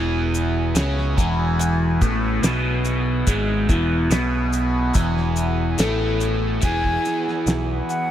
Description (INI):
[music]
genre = psychedelic rock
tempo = 72 BPM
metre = 4/4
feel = straight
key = E major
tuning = A4 = 440 Hz
[part]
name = combo organ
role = sustained chords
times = 0.0-8.1 s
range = B3 to G#4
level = -31 LUFS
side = right 4 dB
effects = spring reverb
[part]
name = overdriven electric guitar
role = riff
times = 0.0-8.1 s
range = E2 to G#4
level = -22 LUFS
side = equal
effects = phaser
[part]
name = picked electric bass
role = bass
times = 0.0-7.8 s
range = E1 to C#2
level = -23 LUFS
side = equal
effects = none
[part]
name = damped 70s drum kit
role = drums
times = 0.3-8.1 s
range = hi-hat, kick drum, snare drum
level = -22 LUFS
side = equal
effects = none
[part]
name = maracas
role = percussion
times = 0.3-8.1 s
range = none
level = -32 LUFS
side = left 8 dB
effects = none
[part]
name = breathy bright concert flute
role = melody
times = 6.6-8.1 s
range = F#5 to G#5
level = -25 LUFS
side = left 1 dB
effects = none
[sound]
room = small room ambience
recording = none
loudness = -18 LUFS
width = side -11 dB against mid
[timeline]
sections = 0.0-6.6 A section; 6.6-8.1 B section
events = none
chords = 0.0 Eadd9